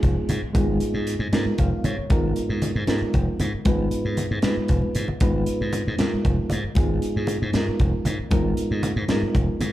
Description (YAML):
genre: electric jazz fusion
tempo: 77 BPM (dotted quarters)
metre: 6/8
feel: straight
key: G# dorian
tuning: A4 = 439 Hz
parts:
  - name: reed electric piano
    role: accompaniment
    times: 0.0-9.7 s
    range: G#3 to E#5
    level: -26 LUFS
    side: right 1 dB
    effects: fast tremolo, slapback echo
  - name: slap bass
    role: bass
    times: 0.0-9.7 s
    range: E#1 to G#2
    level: -24 LUFS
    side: equal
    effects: none
  - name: crisp fusion drum kit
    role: drums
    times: 0.0-9.7 s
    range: hi-hat, kick drum, snare drum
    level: -26 LUFS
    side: equal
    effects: none
  - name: congas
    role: percussion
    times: 0.0-9.7 s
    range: none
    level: -29 LUFS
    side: left 2 dB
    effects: slapback echo
room: light reverb, small room ambience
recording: live gig heard through the venue's PA, club reverb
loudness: -20 LUFS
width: side -14 dB against mid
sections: 0.0-9.7 A section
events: reed electric piano fill 1.3-2.1; drum fill 4.8-5.2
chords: 0.0 G#m69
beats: | 0.55 1.33 | 2.10 2.88 | 3.66 4.43 | 5.21 5.99 | 6.76 7.54 | 8.32 9.10